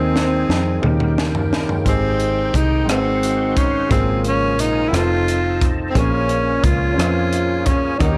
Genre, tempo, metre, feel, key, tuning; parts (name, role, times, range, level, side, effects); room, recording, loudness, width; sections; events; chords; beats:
slow gospel; 58 BPM (dotted quarters); 6/8; straight; Ab major; A4 = 441 Hz
growling tenor saxophone; melody; 0.0-8.2 s; C4 to F4; -22 LUFS; equal
warm upright piano; accompaniment; 0.0-8.2 s; Ab2 to C5; -25 LUFS; equal
overdriven tonewheel organ; sustained chords; 0.0-8.2 s; Db3 to G5; -31 LUFS; equal; fast rotary speaker, chorus vibrato
fingered electric bass; bass; 0.0-8.2 s; F1 to F2; -24 LUFS; equal
crisp fusion drum kit; drums; 0.2-8.2 s; hi-hat, kick drum, rim click, snare drum, toms; -23 LUFS; equal
light reverb, studio reverb; -18 LUFS; mono
0.0-8.2 A section
drum fill 0.0-1.9
0.0 Ab/Eb; 0.8 Eb7; 1.9 Abmaj7; 2.9 Ab7; 3.9 Db6/Ab; 4.9 F7; 6.0 Bbm7
0.83 | 1.85 2.88 | 3.90 4.93 | 5.95 6.98 | 8.00